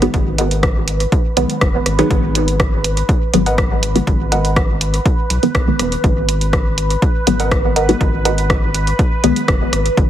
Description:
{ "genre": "dub techno", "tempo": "122 BPM", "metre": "4/4", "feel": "straight", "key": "G# minor", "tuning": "A4 = 440 Hz", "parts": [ { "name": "filtered dub chord stab", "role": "riff", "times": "0.0-8.5 s", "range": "A#4 to F#5", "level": "-23 LUFS", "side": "right 1 dB", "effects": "chorus, sidechain pumping, dub echo" }, { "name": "filtered dub chord stab", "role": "stabs", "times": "0.0-9.4 s", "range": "D#3 to B3", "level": "-19 LUFS", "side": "equal", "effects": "chorus, phaser, sidechain pumping, dub echo" }, { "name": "round analog bass", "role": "bass", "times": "0.0-10.1 s", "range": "D#1 to B1", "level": "-19 LUFS", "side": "equal", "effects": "sidechain pumping" }, { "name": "soft vintage rhythm box", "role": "drums", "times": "0.0-10.1 s", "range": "hi-hat, rim click", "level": "-21 LUFS", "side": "equal", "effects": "dub echo" }, { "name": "bubbling stepped-filter texture", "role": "texture", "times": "0.0-10.1 s", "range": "B4", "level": "-24 LUFS", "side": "right 1 dB", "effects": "chorus, built-in reverb, sidechain pumping" }, { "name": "electronic kick drum", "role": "drums", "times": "0.1-10.1 s", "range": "none", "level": "-16 LUFS", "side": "equal", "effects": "none" } ], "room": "light reverb", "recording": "heavily compressed radio sound, multiband compression", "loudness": "-13 LUFS", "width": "side -11 dB against mid", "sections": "0.0-10.1 A section", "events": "filter sweep on synth stab 0.0-10.1", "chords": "0.0 G#m7" }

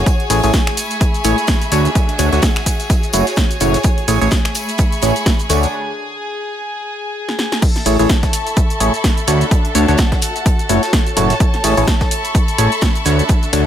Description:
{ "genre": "piano house", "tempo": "127 BPM", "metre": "4/4", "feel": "swing 57% on 16ths", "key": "A major", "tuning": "A4 = 440 Hz", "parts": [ { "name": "warm studio violin section", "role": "sustained chords", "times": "0.0-13.7 s", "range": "G#4 to A5", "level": "-24 LUFS", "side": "left 1 dB", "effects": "sidechain pumping" }, { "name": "percussive organ stab", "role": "riff", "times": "0.0-13.6 s", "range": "A2 to C#5", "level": "-18 LUFS", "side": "equal", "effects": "chorus, phaser, sidechain pumping, tape echo" }, { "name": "fat analog bass", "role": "bass", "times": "0.0-13.6 s", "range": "F#1 to D2", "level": "-16 LUFS", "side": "equal", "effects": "sidechain pumping" }, { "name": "clear studio string section", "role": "texture", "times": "0.0-13.7 s", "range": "A3 to C#6", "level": "-25 LUFS", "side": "equal", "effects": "sidechain pumping" }, { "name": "electronic kick drum", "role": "drums", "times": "0.1-13.4 s", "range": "none", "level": "-15 LUFS", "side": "equal", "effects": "overdrive" }, { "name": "punchy analog drum machine", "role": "drums", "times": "0.1-13.6 s", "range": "crash cymbal, finger snaps, hi-hat, shaker, snare drum", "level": "-21 LUFS", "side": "equal", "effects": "overdrive" }, { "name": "tight metal drum kit", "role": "drums", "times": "0.1-13.7 s", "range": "hi-hat, snare drum", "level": "-31 LUFS", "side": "right 3 dB", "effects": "none" }, { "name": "tambourine", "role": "percussion", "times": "0.1-5.7 s", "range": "none", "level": "-32 LUFS", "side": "left 4 dB", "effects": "none" } ], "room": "studio reverb", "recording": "none", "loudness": "-13 LUFS", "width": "side -10 dB against mid", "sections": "0.0-7.6 A section; 7.6-13.7 B section", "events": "break 5.7-7.6; drum fill 7.3-7.6; band accent 7.5; drop 7.6-13.7", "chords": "0.1 Amaj7; 1.7 Dmaj7; 2.7 F#m7; 3.8 Amaj7; 5.5 Dmaj7; 6.4 N.C.; 7.6 Amaj7; 9.3 Dmaj7; 10.2 F#m7; 11.4 Amaj7; 13.1 Dmaj7" }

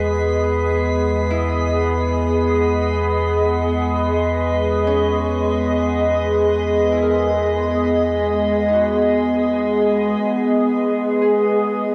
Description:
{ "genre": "ambient", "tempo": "free time", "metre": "none", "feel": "none", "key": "E lydian", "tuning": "A4 = 442 Hz", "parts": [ { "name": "glassy FM pad", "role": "sustained chords", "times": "0.0-11.9 s", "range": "G#3 to D#5", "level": "-19 LUFS", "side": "equal", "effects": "ensemble chorus, built-in reverb, cassette tape, shimmer reverb" }, { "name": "warm sub bass", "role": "bass", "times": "0.0-10.2 s", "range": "E2", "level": "-27 LUFS", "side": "equal", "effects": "none" }, { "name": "drifting glass-harmonics texture", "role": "texture", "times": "0.0-10.2 s", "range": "B4 to B6", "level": "-31 LUFS", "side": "equal", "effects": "chorus, built-in reverb, cassette tape, shimmer reverb" }, { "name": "Celtic harp", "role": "arpeggios", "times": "1.3-11.9 s", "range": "C#4 to A#4", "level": "-36 LUFS", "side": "equal", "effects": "none" } ], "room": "wet booth ambience, RT60 0.2 s", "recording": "home recording on cassette", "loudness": "-18 LUFS", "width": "mono", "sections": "0.0-10.2 A section; 10.2-11.9 B section", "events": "none", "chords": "0.0 Emaj7; 10.2 Emaj7 (rootless)" }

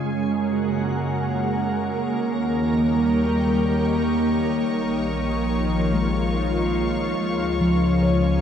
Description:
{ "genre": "ambient", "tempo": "72 BPM", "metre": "3/4", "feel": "straight", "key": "Gb major", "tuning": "A4 = 440 Hz", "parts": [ { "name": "soft additive organ-like pad", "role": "sustained chords", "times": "0.0-8.4 s", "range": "Db3 to Bb4", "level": "-21 LUFS", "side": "right 1 dB", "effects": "ensemble chorus, built-in reverb" }, { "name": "warm sub bass", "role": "bass", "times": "0.0-8.4 s", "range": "Bb1 to Gb2", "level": "-29 LUFS", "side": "equal", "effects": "none" }, { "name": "warm studio violin section", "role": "texture", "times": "0.0-8.4 s", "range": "Db5 to Db6", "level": "-33 LUFS", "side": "left 2 dB", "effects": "none" }, { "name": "handpan", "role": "arpeggios", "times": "5.9-8.4 s", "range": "F3 to Db5", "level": "-25 LUFS", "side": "left 3 dB", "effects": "diffuse ambient delay" } ], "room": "wet huge ambient reverb, RT60 9.5 s", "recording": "dark, warm production", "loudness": "-20 LUFS", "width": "side -8 dB against mid", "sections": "0.0-8.4 A section", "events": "fade-in on sub bass 0.0-8.4; fade-in on violin section 0.0-8.4", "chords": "0.0 Gbadd9; 2.2 Eb; 4.7 Bbsus4; 7.2 Db" }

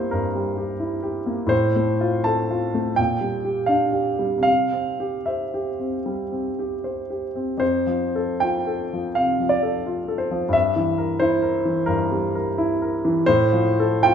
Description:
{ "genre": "classical, romantic character piece for solo piano", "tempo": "71-91 BPM", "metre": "4/4", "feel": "rubato", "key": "F major", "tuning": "A4 = 441 Hz", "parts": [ { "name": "warm baby grand piano", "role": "solo", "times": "0.0-14.1 s", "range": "F2 to A5", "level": "-20 LUFS", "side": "equal", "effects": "none" } ], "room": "moderate recital hall reverb, RT60 1.7 s", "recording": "minimal, uncompressed stereo recording", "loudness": "-20 LUFS", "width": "side -8 dB against mid", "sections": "0.0-14.1 A section", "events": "none", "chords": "0.0 Edim/G; 1.5 F/A; 3.0 Gm/Bb; 4.5 C; 7.6 F; 10.5 Edim/G; 13.3 F/A" }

